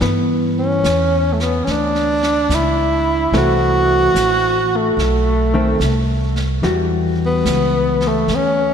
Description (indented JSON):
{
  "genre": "jazz ballad",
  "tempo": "73 BPM",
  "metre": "4/4",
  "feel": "swing 67% on 8ths",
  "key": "unclear",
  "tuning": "A4 = 440 Hz",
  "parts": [
    { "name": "vintage hollow-body jazz guitar", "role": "accompaniment", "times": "0.0-8.7 s", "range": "D#3 to F#4", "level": "-21 LUFS", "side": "left 2 dB", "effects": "none" },
    { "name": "upright bass", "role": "bass", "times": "0.0-8.7 s", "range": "A1 to G2", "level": "-20 LUFS", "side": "equal", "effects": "none" },
    { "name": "vintage brush drum kit", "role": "drums", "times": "0.0-8.7 s", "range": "brushed snare drum, hi-hat, snare drum", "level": "-28 LUFS", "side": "right 1 dB", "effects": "none" },
    { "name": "breathy tenor saxophone", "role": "melody", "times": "0.6-8.7 s", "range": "A3 to F#4", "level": "-17 LUFS", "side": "right 1 dB", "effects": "diffuse ambient delay" }
  ],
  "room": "wet lush hall reverb, RT60 2.8 s",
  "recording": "dreamy mix soaked in reverb",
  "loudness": "-14 LUFS",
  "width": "side -7 dB against mid",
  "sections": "0.0-8.7 A section",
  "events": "none",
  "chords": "0.0 G6; 3.3 F#m7b5; 5.0 B7b9; 6.6 Em9"
}